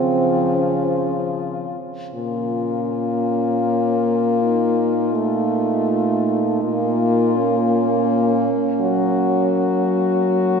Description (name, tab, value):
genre	classical, lyrical piece for horn quartet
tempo	free time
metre	none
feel	none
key	Bb minor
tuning	A4 = 440 Hz
part	clear French horn	melody	0.0-10.6 s	F4 to Gb4	-25 LUFS	left 7 dB	none
part	mellow French horn	second line	0.0-10.6 s	C4 to Eb4	-23 LUFS	right 6 dB	none
part	warm French horn	accompaniment	0.0-10.6 s	F3 to Bb3	-22 LUFS	left 5 dB	none
part	mellow French horn	bass	0.0-10.6 s	Bb2 to Gb3	-22 LUFS	right 1 dB	none
room	wet cathedral reverb, RT60 5.0 s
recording	minimal, uncompressed stereo recording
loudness	-17 LUFS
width	side -6 dB against mid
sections	0.0-2.1 A section; 2.1-10.6 B section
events	none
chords	0.0 Db; 2.1 Bbm; 4.4 F7/Bb; 6.6 Bbm; 8.8 Gb